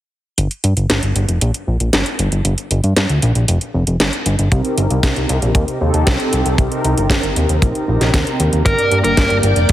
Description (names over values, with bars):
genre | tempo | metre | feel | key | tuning
italo disco | 116 BPM | 4/4 | straight | G minor | A4 = 438 Hz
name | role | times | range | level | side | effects
fat analog bass | bass | 0.4-9.7 s | F1 to G2 | -16 LUFS | equal | none
house drum kit | drums | 0.4-9.7 s | hi-hat, snare drum | -19 LUFS | equal | none
mellow synth brass | stabs | 4.5-9.7 s | G2 to Bb4 | -19 LUFS | equal | chorus, shimmer reverb
kick drum | drums | 4.5-9.7 s | none | -16 LUFS | equal | none
dark smooth lead guitar | melody | 8.7-9.4 s | Bb4 | -16 LUFS | right 1 dB | overdrive, ping-pong delay, shimmer reverb
string machine, full ensemble | sustained chords | 8.7-9.7 s | Bb3 to D6 | -20 LUFS | equal | phaser, ensemble chorus, shimmer reverb
room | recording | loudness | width
moderate plate reverb, RT60 2.0 s | heavily compressed radio sound, multiband compression | -14 LUFS | side -13 dB against mid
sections
0.4-8.7 A section; 8.7-9.7 B section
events
none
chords
0.4 Gm; 4.5 Cm7; 8.7 Gm